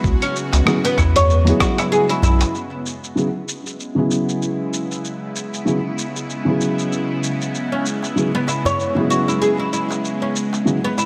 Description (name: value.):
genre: organic downtempo.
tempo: 96 BPM.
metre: 4/4.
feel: swing 57% on 16ths.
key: C# minor pentatonic.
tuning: A4 = 441 Hz.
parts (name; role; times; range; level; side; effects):
felt-muted upright piano; accompaniment; 0.0-10.8 s; C#3 to G#4; -24 LUFS; equal; sidechain pumping, low-pass filter, digital delay.
bowed-like drone; sustained chords; 0.0-11.1 s; C#3 to F#4; -28 LUFS; equal; built-in reverb, phaser, sidechain pumping.
oud; arpeggios; 0.0-2.5, 7.7-11.1 s; B3 to C#5; -23 LUFS; equal; digital delay.
round analog bass; bass; 0.0-2.4 s; B1 to E2; -18 LUFS; equal; sidechain pumping.
electronic kick drum; drums; 0.0-1.7 s; none; -23 LUFS; equal; none.
dusty soul sampler-style drum kit; drums; 0.1-11.1 s; claves, hi-hat, rim click, shaker; -28 LUFS; equal; none.
darbuka; percussion; 0.5-2.5, 8.0-11.1 s; none; -29 LUFS; equal; none.
room: moderate concert hall reverb, RT60 2.1 s.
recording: none.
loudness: -19 LUFS.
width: mono.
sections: 0.0-2.5 A section; 2.5-11.1 B section.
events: filter sweep on felt piano 2.5-11.1.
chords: 0.0 C#m7.